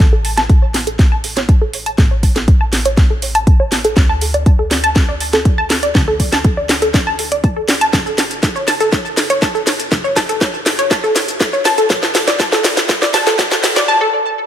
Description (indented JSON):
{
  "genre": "progressive house",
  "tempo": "121 BPM",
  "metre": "4/4",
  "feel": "straight",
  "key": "unclear",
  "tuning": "A4 = 440 Hz",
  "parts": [
    { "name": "plucky analog bass", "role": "bass", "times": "0.0-13.9 s", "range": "F#1 to D2", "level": "-24 LUFS", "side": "equal", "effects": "sidechain pumping" },
    { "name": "electronic kick drum", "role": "drums", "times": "0.0-13.5 s", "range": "none", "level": "-12 LUFS", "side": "equal", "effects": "none" },
    { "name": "house drum kit", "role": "drums", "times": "0.0-13.9 s", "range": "hi-hat, shaker, snare drum", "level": "-16 LUFS", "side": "equal", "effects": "none" },
    { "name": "wide unison pluck", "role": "arpeggios", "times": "0.1-14.1 s", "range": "A4 to A5", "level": "-17 LUFS", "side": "equal", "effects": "cassette tape, sidechain pumping, digital delay" }
  ],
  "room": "light reverb",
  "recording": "high-pass filter",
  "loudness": "-12 LUFS",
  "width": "side -10 dB against mid",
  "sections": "0.0-14.5 A section",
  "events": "build-up 0.0-14.5; drum fill 0.0-13.9; filter sweep on synth pluck 0.0-14.5; filter sweep 0.0-14.5",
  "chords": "0.0 N.C.; 4.0 D5; 7.9 F#m; 11.9 N.C."
}